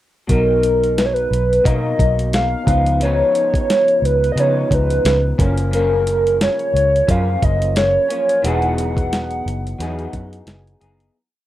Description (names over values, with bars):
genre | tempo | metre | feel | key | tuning
indie pop, bedroom pop | 88 BPM | 4/4 | swing 55% on 16ths | unclear | A4 = 440 Hz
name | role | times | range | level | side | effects
warbly nostalgic lead | melody | 0.3-10.4 s | A#4 to F#5 | -17 LUFS | equal | tremolo, wide subtle chorus, slapback echo
electric guitar through a small old amp | accompaniment | 0.3-11.2 s | F#2 to G#4 | -25 LUFS | left 3 dB | lush chorus, vibrato effect
warbly lo-fi synth keys | accompaniment | 0.3-11.2 s | E#3 to A#5 | -32 LUFS | right 2 dB | chorus
vintage muted fingered electric bass | bass | 0.3-11.1 s | E1 to C#3 | -20 LUFS | equal | none
dusty soul sampler-style drum kit | drums | 0.3-11.1 s | hi-hat, kick drum, snare drum | -20 LUFS | equal | none
room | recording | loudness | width
moderate small room reverb, RT60 0.6 s | rough home demo mix | -14 LUFS | side -14 dB against mid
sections
0.3-11.2 verse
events
fade-out 8.4-11.2; synth keys fill 9.8-11.2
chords
0.3 Bmaj7; 2.7 C#9; 5.4 F#maj7; 8.4 Emaj9